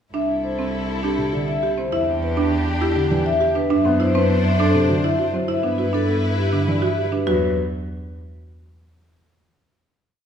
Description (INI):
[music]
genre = classical, minimalist pattern music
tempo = 101 BPM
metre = 3/4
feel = straight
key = E minor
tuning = A4 = 441 Hz
[part]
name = vibraphone with medium hard mallets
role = melody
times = 0.1-7.5 s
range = G4 to E5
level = -23 LUFS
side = left 5 dB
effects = none
[part]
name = warm studio violin section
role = sustained chords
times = 0.1-7.1 s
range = D4 to C5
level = -28 LUFS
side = left 4 dB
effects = none
[part]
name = buzzing marimba with medium mallets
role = arpeggios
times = 0.1-7.5 s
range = C4 to G4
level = -23 LUFS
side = right 6 dB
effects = none
[part]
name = warm cello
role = bass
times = 0.1-7.6 s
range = C2 to G2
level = -24 LUFS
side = right 2 dB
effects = none
[part]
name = dark concert grand piano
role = accompaniment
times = 1.2-7.5 s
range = C3 to B3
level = -26 LUFS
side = equal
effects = none
[sound]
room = wet recital hall reverb, RT60 1.7 s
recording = recorded in a church or concert hall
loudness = -18 LUFS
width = side -8 dB against mid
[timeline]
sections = 0.1-7.3 A section; 7.3-9.1 final chord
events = none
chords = 0.1 C6; 1.9 Em7; 3.7 D13/F#; 5.5 G6; 7.3 Esus2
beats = | 0.14 0.74 1.33 | 1.93 2.52 3.11 | 3.71 4.30 4.90 | 5.49 6.08 6.68 | 7.27